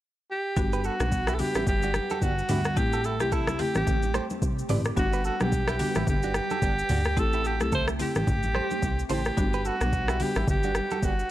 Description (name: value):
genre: afrobeats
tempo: 109 BPM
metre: 4/4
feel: swing 58% on 16ths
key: unclear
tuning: A4 = 442 Hz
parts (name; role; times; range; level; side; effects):
- breathy alto saxophone; melody; 0.3-11.3 s; E4 to C5; -29 LUFS; right 1 dB; none
- buzzing marimba with medium mallets; accompaniment; 0.6-10.5 s; G3 to F#5; -33 LUFS; left 2 dB; none
- hollow soft pad; sustained chords; 0.6-11.3 s; G3 to F#5; -39 LUFS; equal; none
- plucky analog bass; bass; 0.6-11.2 s; G1 to D2; -29 LUFS; equal; none
- afro-pop drum kit; drums; 0.6-11.3 s; hi-hat, kick drum, rim click, shaker, toms; -29 LUFS; equal; none
- direct-recorded clean electric guitar; riff; 0.7-11.1 s; D4 to D5; -36 LUFS; right 8 dB; spring reverb
- congas; percussion; 1.0-11.0 s; none; -36 LUFS; left 1 dB; none
room: little or no reverb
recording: dry, gritty hardware recording, transformer saturation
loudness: -24 LUFS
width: side -14 dB against mid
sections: 0.6-11.3 A section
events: none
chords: 0.0 N.C.; 0.6 Gmaj7; 2.8 Am7; 5.0 Gmaj7; 7.2 Am7; 9.4 Gmaj7